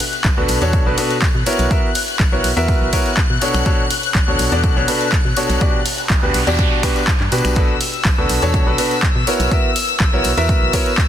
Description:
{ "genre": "piano house", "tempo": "123 BPM", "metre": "4/4", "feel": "straight", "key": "B minor", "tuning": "A4 = 440 Hz", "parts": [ { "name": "warm studio string section", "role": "sustained chords", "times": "0.0-11.1 s", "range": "E6 to F#6", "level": "-23 LUFS", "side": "left 6 dB", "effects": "sidechain pumping" }, { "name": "punchy analog drum machine", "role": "drums", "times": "0.0-11.1 s", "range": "finger snaps, handclaps, hi-hat, ride cymbal", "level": "-23 LUFS", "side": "right 1 dB", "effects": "none" }, { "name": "tambourine", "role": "percussion", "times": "0.0-11.1 s", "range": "none", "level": "-31 LUFS", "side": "left 8 dB", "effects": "none" }, { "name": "organ-like FM bass", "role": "bass", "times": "0.2-10.7 s", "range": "B1 to B2", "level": "-21 LUFS", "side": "equal", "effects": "sidechain pumping" }, { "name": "electronic kick drum", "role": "drums", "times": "0.2-11.1 s", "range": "none", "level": "-17 LUFS", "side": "equal", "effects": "none" }, { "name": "bright concert grand piano", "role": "riff", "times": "0.4-10.9 s", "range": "B2 to E5", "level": "-19 LUFS", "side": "equal", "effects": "sidechain pumping, ping-pong delay" }, { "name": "noise sweep", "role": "sound effects", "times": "5.9-7.6 s", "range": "none", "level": "-26 LUFS", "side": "right 4 dB", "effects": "none" } ], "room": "small room ambience", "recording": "dense, heavily limited modern master", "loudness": "-14 LUFS", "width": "side -10 dB against mid", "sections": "0.0-11.1 A section", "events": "noise sweep 5.9-7.6", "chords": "0.0 Bm7; 1.5 F#7/B; 3.4 Dmaj7/B; 5.6 Gmaj7/B; 7.6 Bm7; 9.3 F#7/B", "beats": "0.25 0.73 1.22 | 1.71 2.20 2.69 3.17 | 3.66 4.15 4.64 5.12 | 5.61 6.10 6.59 7.08 | 7.56 8.05 8.54 9.03 | 9.51 10.00 10.49 10.98" }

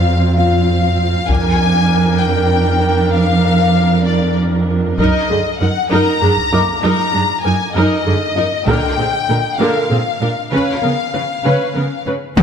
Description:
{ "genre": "cinematic, hybrid orchestral and electronic film score", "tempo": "65 BPM (dotted quarters)", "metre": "6/8", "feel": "straight", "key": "unclear", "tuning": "A4 = 440 Hz", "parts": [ { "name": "warm symphonic violin section", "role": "melody", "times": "0.0-12.0 s", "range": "D5 to Bb5", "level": "-19 LUFS", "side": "left 6 dB", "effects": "none" }, { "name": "rich symphonic viola section", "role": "accompaniment", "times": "0.0-12.4 s", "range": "D3 to Cb5", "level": "-19 LUFS", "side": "right 2 dB", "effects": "none" }, { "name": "warm symphonic cello section", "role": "bass", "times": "0.0-12.4 s", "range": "F2 to Db4", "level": "-16 LUFS", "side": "right 2 dB", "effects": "none" }, { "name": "felt-muted upright piano", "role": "texture", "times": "0.0-10.6 s", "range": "F4 to D6", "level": "-26 LUFS", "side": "left 6 dB", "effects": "digital delay" }, { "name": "taiko ensemble", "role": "drums", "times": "1.3-12.4 s", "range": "none", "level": "-22 LUFS", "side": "left 1 dB", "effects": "none" }, { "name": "rich studio double bass section", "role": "bass", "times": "12.4 s", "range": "Gb2", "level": "-22 LUFS", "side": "right 4 dB", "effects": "none" }, { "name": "impact", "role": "sound effects", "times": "12.4 s", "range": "none", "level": "-7 LUFS", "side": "left 2 dB", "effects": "none" } ], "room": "moderate scoring stage reverb, RT60 1.8 s", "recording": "none", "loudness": "-13 LUFS", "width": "side -7 dB against mid", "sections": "0.0-12.4 A section", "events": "none", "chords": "0.0 F5; 1.3 Bb/F; 5.0 Ebm/Gb; 8.7 Bb; 10.5 Db7", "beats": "0.37 | 1.29 2.21 | 3.14 4.06 | 4.98 5.91 | 6.83 7.75 | 8.68 9.60 | 10.52 11.45 | 12.37" }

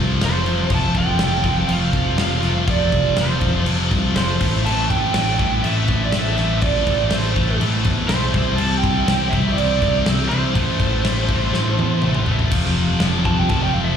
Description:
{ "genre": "hard rock", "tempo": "122 BPM", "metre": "4/4", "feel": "straight", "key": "unclear", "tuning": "A4 = 439 Hz", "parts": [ { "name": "lush unison pad", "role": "sustained chords", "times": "0.0-14.0 s", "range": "F3 to A5", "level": "-34 LUFS", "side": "left 1 dB", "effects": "none" }, { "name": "scooped high-gain guitar", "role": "riff", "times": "0.0-14.0 s", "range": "F2 to C4", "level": "-23 LUFS", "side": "left 10 dB", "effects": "distortion" }, { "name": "scooped high-gain guitar", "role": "riff", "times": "0.0-14.0 s", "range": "F2 to C4", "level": "-27 LUFS", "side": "right 12 dB", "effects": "distortion" }, { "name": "tight distorted guitar", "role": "riff", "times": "0.0-14.0 s", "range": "A2 to F4", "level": "-30 LUFS", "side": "right 1 dB", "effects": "distortion, slapback echo" }, { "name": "modern bright picked electric bass", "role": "bass", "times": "0.0-14.0 s", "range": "F1 to E2", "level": "-21 LUFS", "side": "equal", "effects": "none" }, { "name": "lead guitar through a small cranked amp", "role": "melody", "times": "0.2-14.0 s", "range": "C5 to A5", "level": "-24 LUFS", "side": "right 5 dB", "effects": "overdrive, slapback echo, analog delay" }, { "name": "big rock drum kit", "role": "drums", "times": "0.2-13.6 s", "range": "crash cymbal, kick drum, snare drum, toms", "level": "-22 LUFS", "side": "equal", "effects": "none" } ], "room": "light reverb, studio ambience", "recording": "live gig heard through the venue's PA, club reverb", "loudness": "-16 LUFS", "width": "side -8 dB against mid", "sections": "0.0-12.5 A section; 12.5-14.0 B section", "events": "drum fill 11.5-12.5; lead electric guitar solo 12.5-14.0", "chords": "0.0 F; 4.4 Am; 8.3 C; 10.6 Am; 12.5 F", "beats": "0.21 | 0.70 1.20 1.69 2.19 | 2.68 3.17 3.67 4.16 | 4.65 5.14 5.63 6.13 | 6.62 7.11 7.60 8.09 | 8.59 9.08 9.57 10.06 | 10.55 11.04 11.53 12.03 | 12.52 13.01 13.50" }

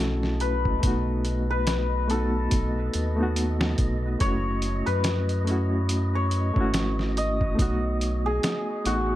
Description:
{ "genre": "trip hop", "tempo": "71 BPM", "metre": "4/4", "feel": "swing 58% on 16ths", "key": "F# dorian", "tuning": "A4 = 439 Hz", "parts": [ { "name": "santur", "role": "melody", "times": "0.0-9.2 s", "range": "F#4 to D#5", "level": "-30 LUFS", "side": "left 3 dB", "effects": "dub echo" }, { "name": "bright reed electric piano", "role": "accompaniment", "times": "0.0-9.2 s", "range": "A3 to F#4", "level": "-29 LUFS", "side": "equal", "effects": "fast tremolo" }, { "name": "round analog bass", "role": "bass", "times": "0.0-9.2 s", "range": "F#1 to F#2", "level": "-27 LUFS", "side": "equal", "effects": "none" }, { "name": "wind-like tuned noise texture", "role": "texture", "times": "0.1-9.2 s", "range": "D#5", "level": "-40 LUFS", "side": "right 3 dB", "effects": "built-in reverb" }, { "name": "trip hop sampler-style drum kit", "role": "drums", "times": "0.2-9.1 s", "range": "hi-hat, kick drum, snare drum", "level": "-27 LUFS", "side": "equal", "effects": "none" } ], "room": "little or no reverb", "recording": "none", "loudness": "-23 LUFS", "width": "side -14 dB against mid", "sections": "0.0-9.2 A section", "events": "none", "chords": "0.0 F#m7; 0.8 B7; 4.2 F#m7; 7.6 B7", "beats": "| 0.83 1.68 2.52 3.37 | 4.21 5.06 5.90 6.75 | 7.59 8.44" }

